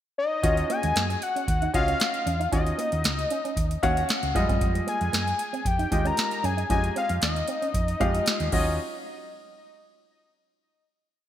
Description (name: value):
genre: early-eighties boogie funk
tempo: 115 BPM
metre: 4/4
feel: straight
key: unclear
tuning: A4 = 440 Hz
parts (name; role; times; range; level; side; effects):
- fat analog lead; melody; 0.2-8.8 s; Eb5 to Bb5; -28 LUFS; left 3 dB; none
- clear concert grand piano; accompaniment; 0.4-8.8 s; G3 to Gb5; -29 LUFS; left 1 dB; none
- hollow-body short-scale fingered electric bass; bass; 0.4-8.8 s; Db2 to Gb2; -28 LUFS; right 1 dB; none
- booming analog drum machine; drums; 0.4-8.7 s; crash cymbal, hi-hat, kick drum, snare drum; -28 LUFS; equal; none
- electric guitar with an envelope filter; riff; 0.6-8.7 s; Gb3 to Eb4; -36 LUFS; right 7 dB; ensemble chorus
room: moderate lush hall reverb, RT60 1.9 s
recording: bright 1980s-style digital production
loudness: -23 LUFS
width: side -11 dB against mid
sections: 0.0-0.4 pickup bar; 0.4-8.8 verse; 8.8-10.9 final hit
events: none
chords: 0.4 Ebm9; 4.4 Fm9; 8.5 Ebm9; 8.8 N.C.